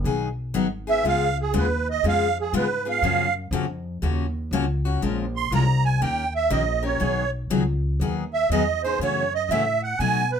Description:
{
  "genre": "acoustic string swing (jazz manouche)",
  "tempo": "121 BPM",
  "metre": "4/4",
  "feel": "swing 66% on 8ths",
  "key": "G# minor",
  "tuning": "A4 = 442 Hz",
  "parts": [
    { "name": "upright bass", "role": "bass", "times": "0.0-10.4 s", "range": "G#1 to B2", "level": "-26 LUFS", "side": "equal", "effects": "none" },
    { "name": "picked steel-string acoustic guitar", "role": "accompaniment", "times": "0.1-10.2 s", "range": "B2 to A#4", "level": "-26 LUFS", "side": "left 5 dB", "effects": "none" },
    { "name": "musette accordion", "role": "melody", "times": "0.9-10.4 s", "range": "G#4 to B#5", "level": "-23 LUFS", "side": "right 5 dB", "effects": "none" }
  ],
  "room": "moderate studio reverb, RT60 0.5 s",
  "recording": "minimal, uncompressed stereo recording",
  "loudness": "-21 LUFS",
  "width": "side -7 dB against mid",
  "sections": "0.0-10.4 A section",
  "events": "accordion solo 0.0-10.4",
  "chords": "0.0 G#m7; 1.0 C#7; 3.0 F#maj7; 5.0 A#m7; 6.0 D#7; 7.0 G#m7; 9.0 F#m7"
}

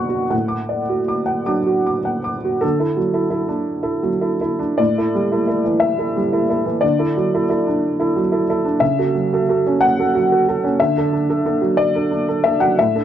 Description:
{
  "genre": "neoclassical minimalist piano",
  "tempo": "51-62 BPM (dotted quarters)",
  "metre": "6/8",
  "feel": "rubato",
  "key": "D major",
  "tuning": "A4 = 445 Hz",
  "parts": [
    { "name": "felt-muted upright piano", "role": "solo", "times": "0.0-13.0 s", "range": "A2 to D6", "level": "-16 LUFS", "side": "right 1 dB", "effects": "none" }
  ],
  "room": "light reverb",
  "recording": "worn, warbling old tape, cassette tape, warbly pitch drift",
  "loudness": "-16 LUFS",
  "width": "side -10 dB against mid",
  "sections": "0.0-2.6 A section; 2.6-13.0 B section",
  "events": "none",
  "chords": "0.3 D/A; 2.6 Dadd9; 4.8 A7sus4; 6.8 Dadd9; 8.8 F#m7/C#; 10.8 Dadd9"
}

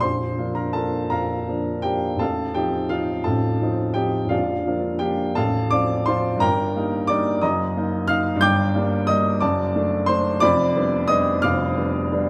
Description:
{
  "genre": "classical, romantic character piece for solo piano",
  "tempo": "54-61 BPM (dotted quarters)",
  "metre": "6/8",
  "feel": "rubato",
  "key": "Bb major",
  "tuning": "A4 = 441 Hz",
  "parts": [
    { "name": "clear baby grand piano", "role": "solo", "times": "0.0-12.3 s", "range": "A0 to G6", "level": "-22 LUFS", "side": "equal", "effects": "none" }
  ],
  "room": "moderate recital hall reverb, RT60 1.7 s",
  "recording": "close, detailed microphones",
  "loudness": "-22 LUFS",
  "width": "mono",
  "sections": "0.0-12.3 A section",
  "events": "none",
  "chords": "0.0 Bb; 2.2 F7/A; 4.3 Bb; 5.4 F/A; 6.4 Eb/G; 7.4 Ebm/Gb; 8.4 Gm; 9.4 D/F#; 10.4 G7/F"
}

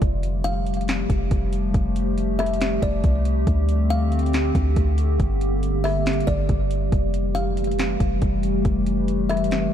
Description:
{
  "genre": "hip hop, atmospheric cloud-rap",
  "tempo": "139 BPM",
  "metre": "4/4",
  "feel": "half-time",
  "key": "unclear",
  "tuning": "A4 = 440 Hz",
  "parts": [
    { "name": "warbly tape-like pad", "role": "sustained chords", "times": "0.0-9.7 s", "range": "D3 to G4", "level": "-25 LUFS", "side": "left 1 dB", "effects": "chorus, built-in reverb, sidechain pumping" },
    { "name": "warm 808-style bass", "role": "bass", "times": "0.0-9.7 s", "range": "F1 to D2", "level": "-23 LUFS", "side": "equal", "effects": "none" },
    { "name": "smooth R&B drum kit", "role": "drums", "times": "0.0-9.6 s", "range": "hi-hat, kick drum, rim click, snare drum", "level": "-24 LUFS", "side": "equal", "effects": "overdrive" },
    { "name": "kalimba", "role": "melody", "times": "0.4-9.7 s", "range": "D5 to F5", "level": "-30 LUFS", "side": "left 2 dB", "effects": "tape echo" }
  ],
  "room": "light reverb",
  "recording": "none",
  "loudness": "-19 LUFS",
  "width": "side -10 dB against mid",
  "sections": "0.0-9.7 A section",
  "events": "none",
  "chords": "0.0 Fadd9; 3.5 Dm7; 5.2 Gm; 6.9 Fmaj9"
}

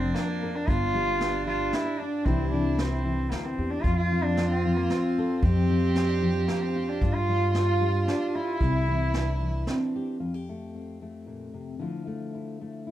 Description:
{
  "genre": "acoustic folk duo or small band",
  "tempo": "113 BPM",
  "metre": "3/4",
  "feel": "straight",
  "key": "F major",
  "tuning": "A4 = 440 Hz",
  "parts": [
    { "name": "warm cello", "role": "melody", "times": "0.0-9.7 s", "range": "Bb3 to F4", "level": "-29 LUFS", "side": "equal", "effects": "none" },
    { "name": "dark fiddle", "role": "second line", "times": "0.0-10.2 s", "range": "C4 to G4", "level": "-31 LUFS", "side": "right 4 dB", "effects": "none" },
    { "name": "fingerpicked steel-string acoustic guitar", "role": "accompaniment", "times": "0.0-12.9 s", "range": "F2 to Bb4", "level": "-31 LUFS", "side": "left 3 dB", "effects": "none" },
    { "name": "upright bass", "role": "bass", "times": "0.0-9.6 s", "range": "F1 to G2", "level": "-27 LUFS", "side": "equal", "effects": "none" },
    { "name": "vintage brush drum kit", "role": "drums", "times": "0.2-9.8 s", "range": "hi-hat, kick drum, snare drum", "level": "-30 LUFS", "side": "equal", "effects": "none" }
  ],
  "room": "moderate studio reverb, RT60 0.5 s",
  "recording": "dark, warm production",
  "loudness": "-24 LUFS",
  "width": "side -12 dB against mid",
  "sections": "0.0-10.2 A section; 10.2-12.9 B section",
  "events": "none",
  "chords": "0.0 Bbadd9/F; 0.7 G5; 2.3 Cadd9; 3.8 F; 5.4 Bb69/F (rootless); 7.0 G5; 8.6 Cadd9; 10.2 Fadd9; 11.8 Dmadd9"
}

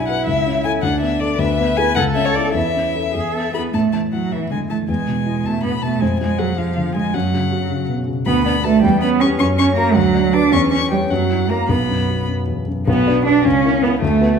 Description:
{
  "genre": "quick classical-period movement for piano trio",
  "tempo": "106 BPM (dotted quarters)",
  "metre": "6/8",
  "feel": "straight",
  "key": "A major, B minor from 8.3 s",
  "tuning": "A4 = 440 Hz",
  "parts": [
    { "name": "muted violin", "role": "melody", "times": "0.0-14.4 s", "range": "A3 to D6", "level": "-23 LUFS", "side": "left 6 dB", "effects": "none" },
    { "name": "muted cello", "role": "second line", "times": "0.0-14.4 s", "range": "E3 to B4", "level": "-18 LUFS", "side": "right 5 dB", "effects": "none" },
    { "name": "dark baby grand piano", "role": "accompaniment", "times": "0.0-14.4 s", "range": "B1 to C#5", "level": "-20 LUFS", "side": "left 3 dB", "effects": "none" }
  ],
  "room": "wet recital hall reverb, RT60 1.4 s",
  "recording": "minimal, uncompressed stereo recording",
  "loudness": "-15 LUFS",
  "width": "side -6 dB against mid",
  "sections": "0.0-3.7 A section; 3.7-12.9 B section; 12.9-14.4 C section",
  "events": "none",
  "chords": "0.3 A/C#; 0.8 Bm7/D; 1.4 E7/D; 2.0 A/C#; 2.6 A/E; 3.1 E; 3.7 A5; 4.9 E; 6.0 Fm6; 7.1 F#5; 8.3 Bm/D; 8.8 C#m7b5/E; 9.4 F#; 10.0 Bm/D; 10.5 C#dim/E; 11.1 F#7; 11.7 B5; 12.9 Bm; 13.4 A#dim/C#"
}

